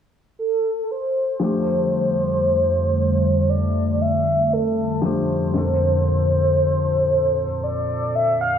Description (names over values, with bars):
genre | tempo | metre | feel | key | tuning
R&B | 58 BPM | 4/4 | straight | F major | A4 = 445 Hz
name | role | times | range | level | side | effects
mellow horn-like synth lead | melody | 0.4-8.6 s | A4 to F5 | -20 LUFS | equal | chorus, digital delay
felt-muted upright piano | accompaniment | 1.4-8.6 s | F2 to A4 | -25 LUFS | left 3 dB | none
hollow soft pad | sustained chords | 1.4-8.6 s | F2 to A4 | -22 LUFS | right 1 dB | chorus
room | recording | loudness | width
light reverb | low-pass filter, studio reverb | -18 LUFS | side -8 dB against mid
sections
0.0-1.4 A section; 1.4-8.6 B section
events
filter sweep 1.4-8.6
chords
0.0 N.C.; 1.4 F69; 5.5 Bbmaj9/F